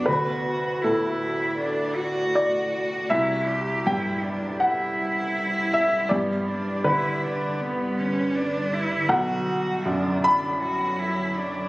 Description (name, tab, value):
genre	neoclassical piano and strings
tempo	80 BPM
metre	4/4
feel	rubato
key	B minor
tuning	A4 = 442 Hz
part	clear cello	second line	0.0-11.7 s	B3 to G4	-27 LUFS	right 1 dB	none
part	clear baby grand piano	accompaniment	0.0-11.7 s	B1 to B5	-24 LUFS	equal	none
part	ethereal airy pad	sustained chords	0.0-11.7 s	D3 to D5	-33 LUFS	equal	ensemble chorus, built-in reverb, phaser
room	wet concert hall reverb, RT60 2.3 s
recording	recorded on a phone in the room, studio reverb, compression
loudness	-22 LUFS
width	side -20 dB against mid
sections	0.0-11.7 A section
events	none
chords	0.1 D; 3.1 C; 6.1 G; 9.1 Bmadd9